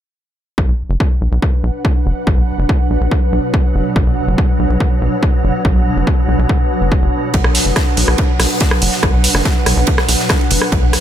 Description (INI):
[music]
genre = driving peak-time techno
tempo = 142 BPM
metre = 4/4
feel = straight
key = B minor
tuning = A4 = 438 Hz
[part]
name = tight sequencer bass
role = bass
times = 0.6-11.0 s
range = F#1 to B1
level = -16 LUFS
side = equal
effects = sidechain pumping
[part]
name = swarming drone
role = drone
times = 2.1-11.0 s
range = B2 to F#3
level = -22 LUFS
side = right 1 dB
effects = built-in reverb, sidechain pumping
[part]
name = electronic kick drum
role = drums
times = 0.6-10.8 s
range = none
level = -15 LUFS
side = equal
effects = none
[part]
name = ethereal airy pad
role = texture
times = 1.3-11.0 s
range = D4 to F#5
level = -21 LUFS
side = right 1 dB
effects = ensemble chorus, built-in reverb, sidechain pumping
[part]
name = huge arena drum kit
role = drums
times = 7.3-11.0 s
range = hi-hat, ride cymbal, snare drum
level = -23 LUFS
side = right 2 dB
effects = sidechain pumping on cymbals, high-pass filter on cymbals, sidechain pumping on hats, high-pass filter on hats, high-pass filter on snare, high-pass filter on room
[part]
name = punchy analog drum machine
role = drums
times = 7.4-11.0 s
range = hi-hat, rim click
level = -17 LUFS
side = right 1 dB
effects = none
[part]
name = riser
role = sound effects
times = 10.9-11.0 s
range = none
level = barely audible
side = none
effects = none
[sound]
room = little or no reverb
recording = none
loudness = -12 LUFS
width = side -10 dB against mid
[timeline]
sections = 0.6-11.0 A section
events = filter sweep on analog synth bass 0.6-11.0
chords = 0.6 Bm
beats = | 0.58 1.00 1.42 1.85 | 2.27 2.69 3.11 3.54 | 3.96 4.38 4.80 5.23 | 5.65 6.07 6.49 6.92 | 7.34 7.76 8.18 8.61 | 9.03 9.45 9.87 10.30 | 10.72